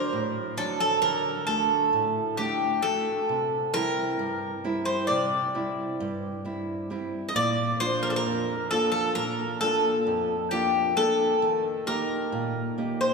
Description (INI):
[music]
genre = greek folk, Greek bouzouki band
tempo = 133 BPM (eighths)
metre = 9/8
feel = straight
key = unclear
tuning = A4 = 440 Hz
[part]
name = Greek bouzouki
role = melody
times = 0.0-13.1 s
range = G4 to Eb5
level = -25 LUFS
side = left 1 dB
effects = none
[part]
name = nylon-string guitar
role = accompaniment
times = 0.0-13.1 s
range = F2 to F#5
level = -30 LUFS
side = right 2 dB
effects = none
[sound]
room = wet church reverb, RT60 3.1 s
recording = recorded in a church or concert hall, small room ambience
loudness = -24 LUFS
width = side -4 dB against mid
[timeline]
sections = 0.0-13.1 A section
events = none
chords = 0.0 D; 3.3 C; 7.4 Bb; 11.4 Eb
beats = 0.12 0.58 1.03 1.48 1.93 2.38 2.84 | 3.29 3.74 4.19 4.64 5.10 5.55 6.00 6.45 6.90 | 7.35 7.80 8.26 8.71 9.16 9.61 10.06 10.51 10.96 | 11.42 11.87 12.32 12.77